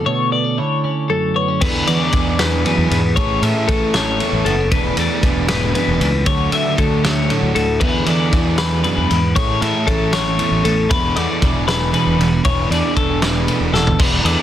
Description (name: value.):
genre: math rock and midwest emo.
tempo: 78 BPM (dotted quarters).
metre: 6/8.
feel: straight.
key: unclear.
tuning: A4 = 440 Hz.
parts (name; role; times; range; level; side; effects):
twelve-string electric guitar; accompaniment; 0.0-14.4 s; D2 to A4; -21 LUFS; right 5 dB; lush chorus.
twelve-string electric guitar; arpeggios; 0.0-14.4 s; A4 to E5; -20 LUFS; left 6 dB; analog delay.
crunchy overdriven guitar; riff; 1.6-14.4 s; E3 to B4; -22 LUFS; right 1 dB; none.
fuzz fingered electric bass; bass; 1.6-14.4 s; E1 to E3; -21 LUFS; equal; overdrive.
loose indie drum kit; drums; 1.6-14.4 s; crash cymbal, kick drum, ride cymbal, snare drum, toms; -20 LUFS; equal; none.
room: light reverb.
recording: dense, heavily limited modern master.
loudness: -14 LUFS.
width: side -11 dB against mid.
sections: 0.0-1.6 A section; 1.6-14.0 B section.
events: break 0.1-1.6; drum fill 13.7.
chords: 0.0 Bm11; 1.6 E5; 3.2 Amaj9; 4.7 E7sus4; 6.3 Dmaj9; 7.8 E5; 9.4 Amaj7; 10.9 E7sus4.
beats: | 0.06 0.84 | 1.62 2.39 | 3.17 3.94 | 4.72 5.49 | 6.27 7.04 | 7.81 8.59 | 9.36 10.14 | 10.91 11.68 | 12.46 13.23 | 14.00.